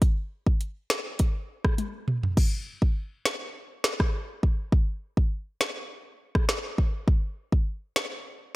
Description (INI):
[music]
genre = dancehall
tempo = 102 BPM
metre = 4/4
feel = straight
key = none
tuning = none
[part]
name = afro-pop drum kit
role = drums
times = 0.0-8.1 s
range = crash cymbal, finger snaps, hi-hat, kick drum, rim click, snare drum, toms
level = -24 LUFS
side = equal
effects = none
[sound]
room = little or no reverb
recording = none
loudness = -25 LUFS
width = side -20 dB against mid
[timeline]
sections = 0.0-2.4 A section; 2.4-8.6 B section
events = drum fill 1.8-2.4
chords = none